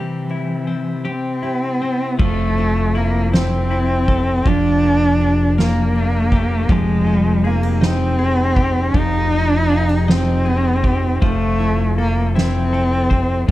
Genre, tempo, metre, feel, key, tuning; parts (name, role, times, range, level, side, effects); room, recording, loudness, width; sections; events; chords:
six-eight pop ballad; 53 BPM (dotted quarters); 6/8; straight; F major; A4 = 440 Hz
warm cello; melody; 0.0-13.5 s; E3 to Eb4; -19 LUFS; equal
twelve-string electric guitar; accompaniment; 0.0-13.5 s; C3 to C5; -24 LUFS; left 5 dB
picked steel-string acoustic guitar; arpeggios; 0.0-13.5 s; F3 to A4; -28 LUFS; right 7 dB
fingered electric bass; bass; 2.2-13.5 s; F1; -19 LUFS; equal
soft-mallet drum kit; drums; 2.2-13.5 s; crash cymbal, kick drum, ride cymbal, snare drum; -21 LUFS; equal
light reverb; dark, warm production; -15 LUFS; side -15 dB against mid
0.0-2.2 A section; 2.2-13.5 B section
0.0 C; 2.2 Fmaj7; 4.5 Bb6/F; 6.7 Abmaj7/F; 11.2 Fmaj7